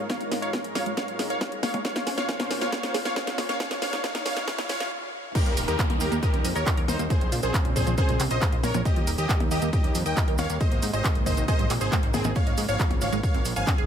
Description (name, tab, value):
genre	uplifting trance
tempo	137 BPM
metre	4/4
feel	straight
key	Bb dorian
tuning	A4 = 444 Hz
part	supersaw stab	melody	0.0-13.8 s	C4 to Ab5	-30 LUFS	equal	sidechain pumping, low-pass filter, ping-pong delay
part	lush unison pad	sustained chords	0.0-13.9 s	Ab2 to C5	-35 LUFS	right 1 dB	chorus, sidechain pumping
part	tight sequenced synth	arpeggios	0.0-13.8 s	Eb3 to Eb5	-35 LUFS	right 3 dB	chorus, phaser, sidechain pumping, ping-pong delay
part	riser and downlifter	sound effects	0.2-8.9 s	none	-38 LUFS	equal	none
part	electronic kick drum	drums	0.1-13.8 s	none	-25 LUFS	equal	high-pass filter on kick, high-pass filter on room
part	techno drum kit	drums	0.1-13.9 s	crash cymbal, handclaps, hi-hat, percussion blips, snare drum	-31 LUFS	equal	none
part	maracas	percussion	5.4-13.8 s	none	-38 LUFS	right 5 dB	none
part	fat analog bass	bass	5.5-13.9 s	Eb1 to Bb2	-29 LUFS	equal	sidechain pumping
room	light reverb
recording	high-pass filter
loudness	-23 LUFS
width	side -8 dB against mid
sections	0.0-5.4 A section; 5.4-13.9 B section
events	build-up 0.0-5.4; drum fill 0.0-4.9; filter sweep 0.0-5.4; stop 4.9-5.4; drop 5.4-13.9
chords	0.0 Db6/Ab; 1.8 Bbmadd9; 5.4 Eb; 7.1 Bbmadd9; 8.9 Eb; 10.6 Abadd9; 12.4 Db6/Ab